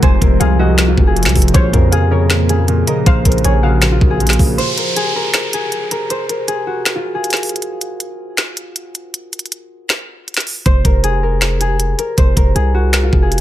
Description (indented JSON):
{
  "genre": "hip hop, trap",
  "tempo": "158 BPM",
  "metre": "4/4",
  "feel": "half-time",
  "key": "F phrygian",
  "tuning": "A4 = 440 Hz",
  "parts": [
    { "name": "concert harp", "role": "melody", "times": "0.0-13.4 s", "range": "F4 to C5", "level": "-19 LUFS", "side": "equal", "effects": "none" },
    { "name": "warbly dusty pluck", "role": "second line", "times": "0.0-4.5 s", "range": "Db5 to Ab5", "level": "-26 LUFS", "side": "equal", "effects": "chorus, ping-pong delay" },
    { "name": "warm baby grand piano", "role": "accompaniment", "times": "0.0-4.6 s", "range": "F2 to Db3", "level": "-20 LUFS", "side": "right 1 dB", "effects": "none" },
    { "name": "warbly tape-like pad", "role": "sustained chords", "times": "0.0-4.6 s", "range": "C3 to F4", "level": "-22 LUFS", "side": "left 2 dB", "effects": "chorus, built-in reverb" },
    { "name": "distorted 808-style bass", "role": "bass", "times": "0.0-4.6, 10.7-13.4 s", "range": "F1 to F2", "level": "-15 LUFS", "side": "equal", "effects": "distortion" },
    { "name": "trap drum kit", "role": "drums", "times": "0.0-13.4 s", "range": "finger snaps, hi-hat, kick drum, snare drum", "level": "-14 LUFS", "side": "equal", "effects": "none" },
    { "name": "downlifter", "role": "sound effects", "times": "4.6-7.6 s", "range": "none", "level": "-22 LUFS", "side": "right 1 dB", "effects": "none" }
  ],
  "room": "digital ambience",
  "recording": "none",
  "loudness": "-12 LUFS",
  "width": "side -13 dB against mid",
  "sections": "0.0-4.6 A section; 4.6-13.4 B section",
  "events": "break 4.6-10.7",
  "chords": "0.0 Fm; 1.5 Bbm; 4.6 N.C.; 10.7 Fm",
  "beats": "| 0.03 0.41 0.79 1.17 | 1.54 1.93 2.30 2.68 | 3.06 3.44 3.82 4.20 | 4.58 4.96 5.34 5.72 | 6.10 6.48 6.86 7.24 | 7.62 8.00 8.38 8.76 | 9.14 9.52 9.90 10.28 | 10.66 11.04 11.42 11.80 | 12.18 12.56 12.94 13.32"
}